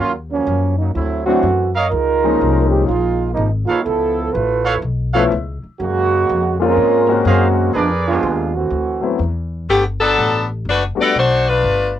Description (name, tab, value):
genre	jazz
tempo	124 BPM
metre	4/4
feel	swing 66% on 8ths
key	unclear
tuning	A4 = 444 Hz
part	warm trombone section	second line	0.0-9.2 s	Db3 to Cb5	-17 LUFS	right 5 dB	cassette tape
part	upright bass	bass	0.0-12.0 s	F#1 to Ab2	-20 LUFS	left 1 dB	none
part	warm concert grand piano	accompaniment	1.3-11.1 s	F3 to Gb4	-18 LUFS	left 7 dB	cassette tape
part	mellow trumpet section	stabs	1.8-8.5 s	Ab4 to F5	-19 LUFS	right 4 dB	cassette tape
part	edgy saxophone section	melody	9.7-11.9 s	D3 to D5	-14 LUFS	left 2 dB	cassette tape
room	wet booth ambience, RT60 0.2 s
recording	home recording on cassette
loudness	-14 LUFS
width	side -11 dB against mid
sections	0.0-9.7 A section; 9.7-12.0 B section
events	trombone section solo 0.0-9.7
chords	0.0 Ebm9; 1.0 D9; 1.9 Db69; 3.9 Db7alt; 5.8 Gbmaj9#11; 7.7 Bb7b9; 8.7 D13; 9.7 Gmaj9